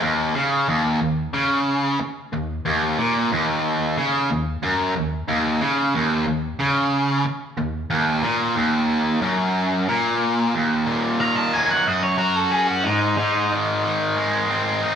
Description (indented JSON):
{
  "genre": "rock",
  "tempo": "91 BPM",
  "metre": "4/4",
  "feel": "straight",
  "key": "Eb dorian",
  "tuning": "A4 = 440 Hz",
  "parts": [
    { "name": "distorted electric guitar", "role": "riff", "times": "0.0-15.0 s", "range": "Eb2 to Gb4", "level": "-19 LUFS", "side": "equal", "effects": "overdrive" },
    { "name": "octave-fuzz lead guitar", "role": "melody", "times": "11.2-13.5 s", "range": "Eb4 to Bb5", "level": "-21 LUFS", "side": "equal", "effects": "distortion" }
  ],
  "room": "wet large studio reverb, RT60 1.2 s",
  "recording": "band playing live in one room",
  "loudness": "-19 LUFS",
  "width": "side -7 dB against mid",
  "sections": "0.0-10.5 A section; 10.5-15.0 B section",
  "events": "lead electric guitar solo 10.5-15.0",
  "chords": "0.0 Eb5; 10.5 Ebm; 11.9 Gb5; 12.8 Ab"
}